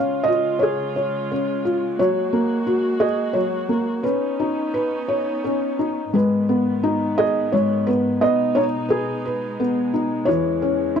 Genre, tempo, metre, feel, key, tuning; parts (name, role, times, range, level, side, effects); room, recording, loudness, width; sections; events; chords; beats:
children's music, lullaby; 87 BPM; 3/4; rubato; B major; A4 = 440 Hz
felt-muted upright piano; melody; 0.0-11.0 s; E3 to E#5; -19 LUFS; equal
dark chamber string section; sustained chords; 0.0-11.0 s; E2 to F#4; -29 LUFS; right 3 dB
studio reverb; dry, close 1970s-style studio recording; -19 LUFS; side -7 dB against mid
0.0-6.1 A section; 6.1-11.0 B section
0.0 C#; 2.0 F#add9; 4.0 Badd9; 6.1 G#m; 8.2 B6; 10.3 E6
0.62 1.30 | 1.98 2.66 3.34 | 4.03 4.73 5.43 | 6.14 6.84 7.53 | 8.22 8.91 9.60 | 10.27 10.96